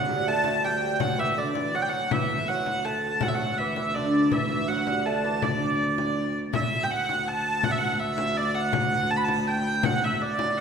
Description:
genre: medieval dance.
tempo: 163 BPM.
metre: 3/4.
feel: straight.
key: D major.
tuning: A4 = 437 Hz.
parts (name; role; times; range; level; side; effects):
clear hurdy-gurdy; melody; 0.0-10.6 s; D5 to B5; -26 LUFS; right 2 dB; none.
lute; second line; 0.0-6.3 s; D3 to A3; -29 LUFS; right 1 dB; none.
rich viola da gamba; drone; 0.0-10.6 s; D2; -32 LUFS; left 2 dB; none.
frame drum; percussion; 0.1-10.6 s; none; -31 LUFS; left 4 dB; none.
room: wet scoring stage reverb, RT60 1.6 s.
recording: recorded in a church or concert hall.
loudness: -23 LUFS.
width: side -6 dB against mid.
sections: 0.0-6.5 A section; 6.5-10.6 A section.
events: none.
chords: none.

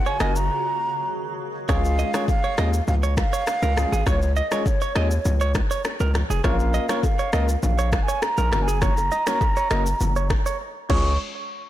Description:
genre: afrobeats.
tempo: 101 BPM.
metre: 4/4.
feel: straight.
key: Db major.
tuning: A4 = 443 Hz.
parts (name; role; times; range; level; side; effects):
mellow hollow concert flute; melody; 0.0-11.2 s; Db5 to Db6; -27 LUFS; right 2 dB; low-pass filter, tape echo.
granular cloud pad; sustained chords; 0.0-1.7 s; Db3 to Ab4; -34 LUFS; equal; built-in reverb.
direct-recorded clean electric guitar; riff; 0.1-11.2 s; Ab4 to Eb5; -29 LUFS; right 7 dB; low-pass filter, tape echo.
afro-pop drum kit; drums; 0.1-11.0 s; crash cymbal, finger snaps, kick drum, rim click, shaker; -25 LUFS; equal; soft clipping on snare.
bell-like tine electric piano; accompaniment; 0.2-11.1 s; Ab3 to Bb4; -30 LUFS; left 6 dB; medium stereo tremolo, low-pass filter.
hard-hitting 808-style bass; bass; 0.2-11.2 s; F1 to Eb2; -22 LUFS; equal; none.
congas and bongos; percussion; 1.7-11.2 s; none; -34 LUFS; left 4 dB; none.
room: light reverb, digital ambience.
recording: blown-out, overdriven recording, overdrive.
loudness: -20 LUFS.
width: side -13 dB against mid.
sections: 0.0-1.7 A section; 1.7-11.2 B section.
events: break 0.5-1.7; filter sweep 1.7-11.2; silent gap 10.6-11.2.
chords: 0.0 Gb; 0.5 Absus2; 1.7 Db; 6.4 Bbm; 8.5 Gb; 10.9 Db; 11.2 N.C..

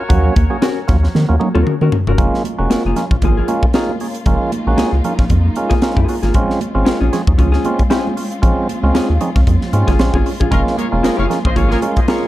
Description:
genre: funk.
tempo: 115 BPM.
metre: 4/4.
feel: swing 56% on 16ths.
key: unclear.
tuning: A4 = 438 Hz.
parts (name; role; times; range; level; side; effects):
clear horn section; second line; 0.0-1.9, 10.5-12.3 s; Db4 to F5; -26 LUFS; left 2 dB; tape echo, plate reverb.
percussive tonewheel organ; stabs; 0.0-12.3 s; Gb3 to Ab4; -21 LUFS; right 2 dB; overdrive, tape echo, plate reverb.
rubbery square bass; bass; 0.1-11.8 s; F1 to Eb3; -15 LUFS; equal; none.
crisp fusion drum kit; drums; 0.1-12.2 s; hi-hat, kick drum, snare drum, toms; -17 LUFS; equal; none.
congas; percussion; 0.1-12.3 s; none; -25 LUFS; right 6 dB; none.
vintage hollow-body jazz guitar; accompaniment; 0.6-12.3 s; Bb3 to Bb4; -20 LUFS; left 3 dB; plate reverb.
dark studio string section; sustained chords; 2.2-12.3 s; Ab3 to F4; -26 LUFS; left 2 dB; plate reverb.
room: light reverb.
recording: dark, warm production.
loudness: -13 LUFS.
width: side -15 dB against mid.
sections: 0.0-2.2 A section; 2.2-12.3 B section.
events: drum fill 1.1-2.2.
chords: 0.0 Ebm7; 6.3 Bbm7; 10.5 Gbmaj9.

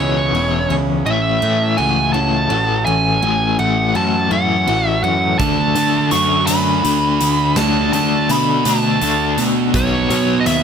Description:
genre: quiet-loud alternative rock.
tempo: 55 BPM (dotted quarters).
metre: 6/8.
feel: straight.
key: unclear.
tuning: A4 = 440 Hz.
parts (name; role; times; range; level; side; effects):
dark smooth lead guitar; melody; 0.0-10.6 s; C#5 to C#6; -18 LUFS; right 1 dB; overdrive.
picked steel-string acoustic guitar; arpeggios; 0.0-5.4 s; E2 to F#4; -24 LUFS; right 10 dB; none.
overdriven semi-hollow guitar; riff; 0.0-10.6 s; E2 to D4; -20 LUFS; left 11 dB; tremolo.
fuzz picked electric bass; bass; 0.0-10.6 s; E1 to D3; -20 LUFS; right 1 dB; overdrive.
thick fuzz guitar; riff; 5.4-10.6 s; B2 to D4; -20 LUFS; right 16 dB; distortion.
big rock drum kit; drums; 5.4-10.6 s; hi-hat, kick drum, snare drum; -24 LUFS; equal; none.
room: light reverb.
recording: none.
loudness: -14 LUFS.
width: side -7 dB against mid.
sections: 0.0-10.6 A section.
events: half time 0.0-10.6.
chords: 0.0 E6; 1.1 A6; 5.4 D; 9.7 B.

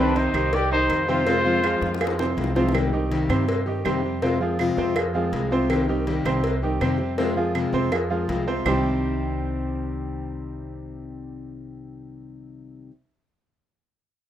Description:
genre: latin, Cuban son and guajira.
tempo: 162 BPM.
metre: 4/4.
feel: straight.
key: C minor.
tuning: A4 = 440 Hz.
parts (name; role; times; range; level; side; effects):
breathy trumpet; melody; 0.0-2.3 s; B4 to D5; -24 LUFS; left 1 dB; none.
dark studio violin section; second line; 0.0-2.3 s; D4 to G4; -29 LUFS; right 1 dB; none.
fingerpicked plugged-in steel-string acoustic guitar; accompaniment; 0.0-12.9 s; C3 to G4; -26 LUFS; left 4 dB; none.
clear grand piano; arpeggios; 0.0-12.9 s; C3 to C5; -26 LUFS; right 4 dB; none.
upright bass; bass; 0.0-12.9 s; C2 to G2; -29 LUFS; equal; none.
cowbell and bongos; percussion; 0.2-8.7 s; none; -30 LUFS; left 4 dB; none.
claves; percussion; 0.3-8.7 s; none; -32 LUFS; right 12 dB; none.
room: moderate studio reverb, RT60 0.5 s.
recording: rough home demo mix.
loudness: -21 LUFS.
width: side -11 dB against mid.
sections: 0.0-2.7 A section; 2.7-8.7 B section; 8.7-11.6 C section.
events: drum fill 1.8-2.7.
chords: 0.0 Cm; 1.3 Fm; 2.7 Cm; 4.2 Fm; 5.7 Cm; 7.2 Fm; 8.7 Cm.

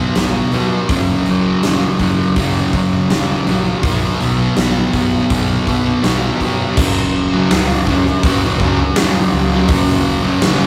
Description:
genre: rock, shoegaze and dream pop.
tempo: 82 BPM.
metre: 4/4.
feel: straight.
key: unclear.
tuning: A4 = 440 Hz.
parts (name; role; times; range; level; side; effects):
fuzz guitar; riff; 0.0-10.7 s; F#2 to B3; -17 LUFS; equal; distortion.
growling picked electric bass; bass; 0.0-10.7 s; F#1 to F#2; -25 LUFS; equal; overdrive.
huge arena drum kit; drums; 0.2-10.6 s; crash cymbal, hi-hat, kick drum, snare drum; -20 LUFS; equal; none.
room: wet small room reverb, RT60 0.5 s.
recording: rough rehearsal-room recording, tube saturation.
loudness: -15 LUFS.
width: mono.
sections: 0.0-6.8 A section; 6.8-10.7 B section.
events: none.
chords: 0.0 B5; 0.9 F#5; 3.8 B5; 6.8 F#5.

